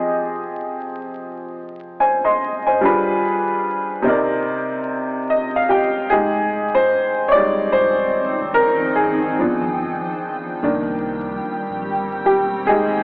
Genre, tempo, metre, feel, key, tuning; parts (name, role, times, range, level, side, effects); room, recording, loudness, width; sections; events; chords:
hip hop; 73 BPM; 4/4; swing 60% on 16ths; F dorian; A4 = 440 Hz
warm upright piano; accompaniment; 0.0-13.0 s; C3 to C6; -17 LUFS; equal; cassette tape, low-pass filter
granular cloud pad; sustained chords; 7.6-13.0 s; Eb3 to G5; -24 LUFS; equal; built-in reverb, low-pass filter
saturated sub bass; bass; 6.1-13.0 s; E1 to C2; -36 LUFS; equal
moderate plate reverb, RT60 3.2 s; vinyl crackle, AM radio sound; -16 LUFS; side -31 dB against mid
0.0-6.1 A section; 6.1-13.0 B section
filter sweep on upright piano 0.0-6.1; upright piano fill 4.9-6.1; upright piano solo 6.1-13.0
0.0 Fm9; 2.8 G7b9; 4.0 Cm7; 6.1 Fm9; 9.4 G7; 10.6 Cm7